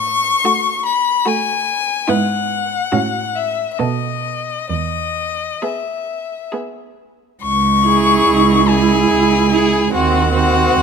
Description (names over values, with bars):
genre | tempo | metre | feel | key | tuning
classical, slow romantic movement for string quartet | 64-75 BPM | 3/4 | rubato | E major, C# minor from 7.4 s | A4 = 438 Hz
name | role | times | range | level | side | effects
warm violin | melody | 0.0-10.8 s | D#5 to C#6 | -17 LUFS | left 7 dB | none
rich cello | bass | 0.0-10.8 s | C#2 to B2 | -18 LUFS | right 5 dB | none
warm viola | accompaniment | 0.4-10.8 s | A3 to E4 | -20 LUFS | right 6 dB | none
rich violin | second line | 0.5-10.8 s | E4 to A4 | -21 LUFS | equal | none
room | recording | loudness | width
light reverb | close, detailed microphones | -14 LUFS | side -6 dB against mid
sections
0.0-7.4 A section; 7.4-10.8 B section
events
none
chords
0.0 F#m/A; 2.1 E/G#; 2.9 F#m7/A; 3.8 B7; 4.7 E; 7.4 C#m; 9.9 Cdim/Eb